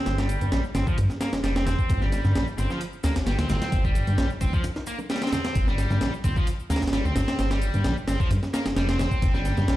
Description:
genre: breakbeat, breaks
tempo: 131 BPM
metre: 4/4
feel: straight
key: G minor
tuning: A4 = 440 Hz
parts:
  - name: distorted electric guitar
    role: riff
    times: 0.0-9.8 s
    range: F3 to C4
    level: -31 LUFS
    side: equal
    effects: overdrive, tube saturation, low-pass filter, ping-pong delay
  - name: detuned saw bass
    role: bass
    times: 0.1-9.8 s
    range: F1 to G2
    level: -25 LUFS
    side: equal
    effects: none
  - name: breakbeat sampler-style drum kit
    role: drums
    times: 0.1-9.8 s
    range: hi-hat, kick drum, snare drum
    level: -26 LUFS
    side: equal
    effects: studio reverb
  - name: shaker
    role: drums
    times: 0.1-9.8 s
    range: none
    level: -48 LUFS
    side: left 5 dB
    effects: overdrive, studio reverb
  - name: congas and bongos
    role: percussion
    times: 0.4-9.7 s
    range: none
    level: -35 LUFS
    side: right 2 dB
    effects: none
room: little or no reverb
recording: played on a big sound system in a bare room, stone room reverb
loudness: -22 LUFS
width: side -15 dB against mid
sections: 0.0-9.8 A section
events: break 4.6-5.6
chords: none

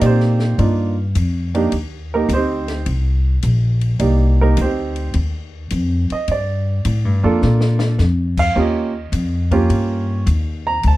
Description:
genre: jazz piano trio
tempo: 105 BPM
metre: 4/4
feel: swing 69% on 8ths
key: unclear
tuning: A4 = 438 Hz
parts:
  - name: warm upright piano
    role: melody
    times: 0.0-11.0 s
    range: Bb3 to Bb5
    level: -19 LUFS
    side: right 3 dB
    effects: none
  - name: upright bass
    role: bass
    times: 0.0-11.0 s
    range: Bb1 to Bb2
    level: -17 LUFS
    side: left 1 dB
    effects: none
  - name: compact cocktail drum kit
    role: drums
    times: 0.0-11.0 s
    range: crash cymbal, hi-hat, kick drum, ride cymbal, snare drum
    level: -30 LUFS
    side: left 3 dB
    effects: none
room: light reverb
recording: dark, warm production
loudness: -15 LUFS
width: side -17 dB against mid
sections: 0.0-11.0 A section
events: upright piano solo 0.0-11.0; drum fill 7.4-8.0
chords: 0.0 Cm7; 6.3 Gm7; 8.6 Eb7

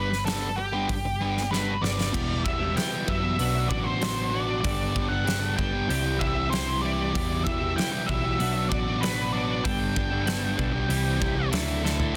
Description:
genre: indie rock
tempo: 96 BPM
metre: 4/4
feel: straight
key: G major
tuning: A4 = 442 Hz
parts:
  - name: octave-fuzz lead guitar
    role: melody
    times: 0.0-11.5 s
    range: G4 to G5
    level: -33 LUFS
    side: equal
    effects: distortion
  - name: sludgy distorted guitar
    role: riff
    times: 0.0-12.2 s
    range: E2 to B4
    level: -32 LUFS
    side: equal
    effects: overdrive
  - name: hollow-body short-scale picked electric bass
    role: bass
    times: 0.0-12.1 s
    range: E1 to F#2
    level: -32 LUFS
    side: equal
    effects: none
  - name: big rock drum kit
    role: drums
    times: 0.1-12.1 s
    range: crash cymbal, hi-hat, kick drum, snare drum, toms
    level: -33 LUFS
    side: equal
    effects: none
  - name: twelve-string electric guitar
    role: riff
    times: 2.1-12.2 s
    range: E2 to A4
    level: -35 LUFS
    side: equal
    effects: analog chorus
room: small room ambience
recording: dense, heavily limited modern master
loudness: -26 LUFS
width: mono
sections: 0.0-2.1 A section; 2.1-12.1 B section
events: drum fill 1.5-2.1, 11.8-12.1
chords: 0.0 G; 2.1 Em; 3.4 Bm; 4.6 Gadd9; 5.9 C; 7.1 Em; 8.4 Bm; 9.7 Gadd9; 10.9 C; 11.5 Dsus2

